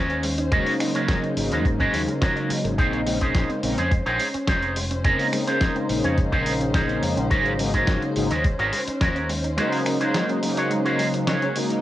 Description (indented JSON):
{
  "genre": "nu-disco, nu disco",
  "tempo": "106 BPM",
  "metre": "4/4",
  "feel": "straight",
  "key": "unclear",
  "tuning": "A4 = 439 Hz",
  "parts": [
    { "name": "dark studio string section", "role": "sustained chords", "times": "0.0-11.8 s", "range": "Db4 to C5", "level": "-31 LUFS", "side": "left 1 dB", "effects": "sidechain pumping" },
    { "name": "wide unison pluck", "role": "arpeggios", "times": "0.0-11.8 s", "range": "Ab3 to Bb4", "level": "-34 LUFS", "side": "right 2 dB", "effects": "none" },
    { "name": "electric guitar with an envelope filter", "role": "riff", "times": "0.0-11.6 s", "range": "Db4 to Db5", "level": "-25 LUFS", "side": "right 1 dB", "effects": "analog chorus, analog delay" },
    { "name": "fingered electric bass with an envelope filter", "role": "bass", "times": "0.0-9.6 s", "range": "F1 to Ab2", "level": "-29 LUFS", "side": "equal", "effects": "sidechain pumping" },
    { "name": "dusty soul sampler-style drum kit", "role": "drums", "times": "0.1-11.8 s", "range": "finger snaps, hi-hat, snare drum", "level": "-30 LUFS", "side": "equal", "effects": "cassette tape" },
    { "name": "mellow synth brass", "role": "accompaniment", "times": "0.5-11.8 s", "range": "Db3 to C5", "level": "-25 LUFS", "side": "left 1 dB", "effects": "chorus, sidechain pumping, analog delay" },
    { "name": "electronic kick drum", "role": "drums", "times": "0.5-9.1 s", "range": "none", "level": "-23 LUFS", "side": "equal", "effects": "cassette tape" }
  ],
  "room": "light reverb",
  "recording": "home recording on cassette",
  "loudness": "-20 LUFS",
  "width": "side -14 dB against mid",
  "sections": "0.0-11.8 A section",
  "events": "none",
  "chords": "0.0 Ab9sus4; 2.8 Bbm11; 7.3 Ab9sus4"
}